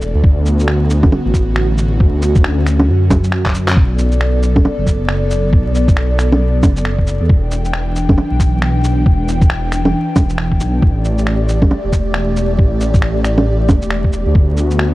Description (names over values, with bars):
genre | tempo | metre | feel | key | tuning
future garage | 136 BPM | 4/4 | swing 61% on 16ths | B minor | A4 = 438 Hz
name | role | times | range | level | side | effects
airy breathy pad | sustained chords | 0.0-14.9 s | D3 to G5 | -20 LUFS | equal | chorus, vintage 12-bit sampler grit, sidechain pumping
dark detuned saw bass | bass | 0.0-14.9 s | E1 to F#2 | -15 LUFS | equal | tube saturation, sidechain pumping
electronic shaker, finger snaps, bongos and handclaps | drums | 0.0-14.9 s | none | -18 LUFS | right 1 dB | none
electronic kick drum | drums | 0.2-14.5 s | none | -12 LUFS | equal | none
room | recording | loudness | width
little or no reverb | vinyl crackle | -12 LUFS | side -18 dB against mid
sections
0.0-14.9 A section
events
drum fill 3.4-3.8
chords
0.2 D6; 3.8 Bm7; 7.3 Em7; 10.8 A7sus4; 14.4 D6